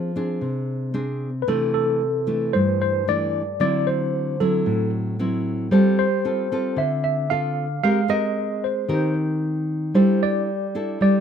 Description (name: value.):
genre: bossa nova.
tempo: 113 BPM.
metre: 4/4.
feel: straight.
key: C major.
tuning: A4 = 440 Hz.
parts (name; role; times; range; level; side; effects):
tine electric piano; melody; 0.0-11.2 s; A4 to F5; -23 LUFS; equal; medium stereo tremolo.
nylon-string guitar; accompaniment; 0.0-11.2 s; G2 to Bb4; -21 LUFS; equal; none.
room: light reverb.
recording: close, detailed microphones.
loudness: -20 LUFS.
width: side -8 dB against mid.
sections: 0.0-11.2 A section.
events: none.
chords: 0.0 Fm6; 1.5 C69; 3.6 D9; 5.7 G9sus4; 7.8 Abmaj9; 10.0 C69/G.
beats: 0.42 0.95 | 1.48 2.01 2.54 3.07 | 3.60 4.13 4.66 5.19 | 5.72 6.25 6.78 7.31 | 7.84 8.37 8.90 9.43 | 9.96 10.48 11.01.